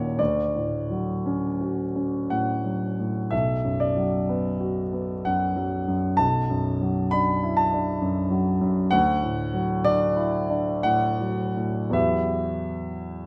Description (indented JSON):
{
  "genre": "classical, impressionist solo piano",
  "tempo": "51-68 BPM",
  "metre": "3/4",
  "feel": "rubato",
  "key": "unclear",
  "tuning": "A4 = 444 Hz",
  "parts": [
    { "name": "clear concert grand piano", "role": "solo", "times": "0.0-13.3 s", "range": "B1 to B5", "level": "-25 LUFS", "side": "equal", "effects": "none" }
  ],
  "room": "moderate scoring stage reverb, RT60 1.6 s",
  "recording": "none",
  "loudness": "-25 LUFS",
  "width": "mono",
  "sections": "0.0-13.3 A section",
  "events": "none",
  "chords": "0.2 Dmaj7; 3.3 Bm; 6.2 Dadd9/B; 8.9 Dadd9; 11.9 Emadd9",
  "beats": "| 0.19 1.26 2.31 | 3.32 4.30 5.26 | 6.22 7.14 8.03 | 8.94 9.86 10.84 | 11.94 13.11"
}